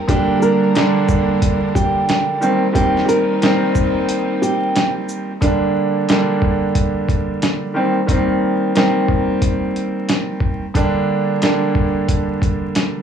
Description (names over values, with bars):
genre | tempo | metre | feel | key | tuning
hip hop, boom-bap hip-hop | 90 BPM | 4/4 | swing 62% on 16ths | G minor | A4 = 440 Hz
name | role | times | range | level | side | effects
warm studio string section | sustained chords | 0.0-5.4 s | G3 to Bb4 | -24 LUFS | right 5 dB | high-pass filter, low-pass filter
flamenco guitar | melody | 0.1-4.9 s | G4 to Bb4 | -20 LUFS | right 1 dB | high-pass filter, low-pass filter, analog delay
warm baby grand piano | accompaniment | 0.1-13.0 s | D3 to D4 | -17 LUFS | right 1 dB | high-pass filter, low-pass filter
dusty soul sampler-style drum kit | drums | 0.1-12.9 s | hi-hat, kick drum, shaker, snare drum | -19 LUFS | equal | none
room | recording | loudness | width
small room ambience | dry, gritty hardware recording, transformer saturation, vinyl crackle, small room reverb | -15 LUFS | side -8 dB against mid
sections
0.0-5.4 A section; 5.4-13.0 B section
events
break 4.1-5.4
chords
0.1 Gm; 2.4 Cm7; 5.4 Gm; 7.8 Cm7; 10.8 Gm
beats
| 0.09 0.75 1.42 2.09 | 2.75 3.42 4.09 4.75 | 5.42 6.09 6.75 7.42 | 8.09 8.75 9.42 10.09 | 10.75 11.42 12.09 12.75